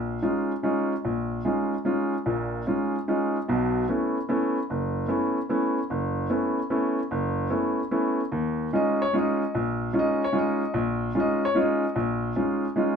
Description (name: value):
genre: jazz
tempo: 148 BPM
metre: 3/4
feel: swing 66% on 8ths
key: unclear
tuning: A4 = 440 Hz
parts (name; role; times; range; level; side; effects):
- clear baby grand piano; solo; 0.0-13.0 s; F#1 to Eb5; -23 LUFS; equal; none
room: wet small room ambience, RT60 0.5 s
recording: heard from further back in the room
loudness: -23 LUFS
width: side -6 dB against mid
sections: 0.0-8.3 A section; 8.3-13.0 B section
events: none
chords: 0.0 Eb9sus4; 3.5 B9sus4; 8.3 Eb9sus4